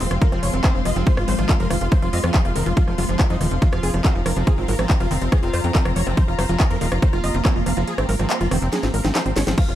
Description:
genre	psychedelic trance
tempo	141 BPM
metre	4/4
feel	straight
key	F minor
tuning	A4 = 438 Hz
part	supersaw stab	melody	0.0-9.7 s	F3 to F5	-28 LUFS	right 1 dB	phaser, sidechain pumping, ping-pong delay
part	evolving wavetable pad	sustained chords	0.0-9.8 s	F3 to F4	-30 LUFS	right 1 dB	ensemble chorus, built-in reverb, phaser, sidechain pumping
part	overdriven acid bass	riff	0.0-9.6 s	Eb3 to F4	-29 LUFS	moving between left 4 dB and right 5 dB	auto-pan, sidechain pumping, tape echo
part	tight sequencer bass	bass	0.0-9.8 s	Eb1 to F2	-22 LUFS	equal	none
part	techno drum kit	drums	0.0-9.7 s	crash cymbal, handclaps, hi-hat, rim click, snare drum	-26 LUFS	equal	overdrive, small room ambience
part	dark chamber string section	texture	0.0-9.6 s	C4 to C6	-32 LUFS	left 3 dB	sidechain pumping
part	electronic kick drum	drums	0.2-9.7 s	none	-18 LUFS	equal	overdrive, small room ambience
room	little or no reverb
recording	dark, warm production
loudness	-17 LUFS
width	side -12 dB against mid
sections	0.0-9.6 A section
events	drop 0.0-9.6; kick drops out 7.9-9.6; drum fill 8.7-9.6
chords	0.0 F5

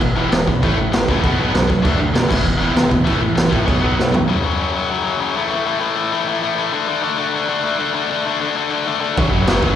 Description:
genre	punk rock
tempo	197 BPM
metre	4/4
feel	straight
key	unclear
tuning	A4 = 442 Hz
part	sludgy distorted guitar	riff	0.0-4.3, 9.2-9.8 s	E2 to D4	-22 LUFS	right 10 dB	overdrive, slapback echo
part	tight distorted guitar	riff	0.0-9.8 s	E2 to D4	-18 LUFS	left 5 dB	distortion, slapback echo
part	fat analog bass	bass	0.0-4.2, 9.2-9.8 s	E1 to B2	-22 LUFS	equal	none
part	raw garage drum kit	drums	0.0-4.2, 9.2-9.7 s	crash cymbal, kick drum, snare drum, toms	-18 LUFS	right 1 dB	none
room	small room ambience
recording	live gig heard through the venue's PA, recital hall reverb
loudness	-15 LUFS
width	side -10 dB against mid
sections	0.0-4.3 A section; 4.3-9.8 B section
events	drum fill 4.0-4.3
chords	0.0 E5; 0.6 A; 1.2 B5; 1.9 D5; 2.3 E5; 3.1 A5; 3.7 B5; 4.3 F#5; 5.4 A5; 6.7 D5; 9.2 F#5

